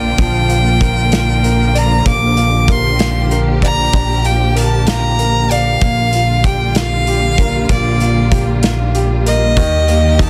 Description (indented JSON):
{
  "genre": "six-eight pop ballad",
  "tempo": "64 BPM (dotted quarters)",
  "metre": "6/8",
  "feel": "straight",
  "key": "unclear",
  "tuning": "A4 = 440 Hz",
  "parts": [
    { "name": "rich violin", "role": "melody", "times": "0.0-10.3 s", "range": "D5 to D6", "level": "-20 LUFS", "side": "equal", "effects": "none" },
    { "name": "bright upright piano", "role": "accompaniment", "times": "0.0-10.3 s", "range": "Eb3 to D5", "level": "-24 LUFS", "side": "equal", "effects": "none" },
    { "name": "warm studio string section", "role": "sustained chords", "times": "0.0-10.3 s", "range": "D3 to G4", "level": "-22 LUFS", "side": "equal", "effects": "none" },
    { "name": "upright bass", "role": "bass", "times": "0.0-10.3 s", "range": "Bb1 to Eb2", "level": "-18 LUFS", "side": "equal", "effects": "none" },
    { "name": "loose indie drum kit", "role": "drums", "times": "0.2-10.3 s", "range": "hi-hat, kick drum, snare drum", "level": "-20 LUFS", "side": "equal", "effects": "none" }
  ],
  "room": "small room ambience",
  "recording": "dense, heavily limited modern master",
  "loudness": "-14 LUFS",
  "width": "mono",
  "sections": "0.0-10.3 A section",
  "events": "none",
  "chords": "0.0 Gm7/Bb; 9.6 Eb"
}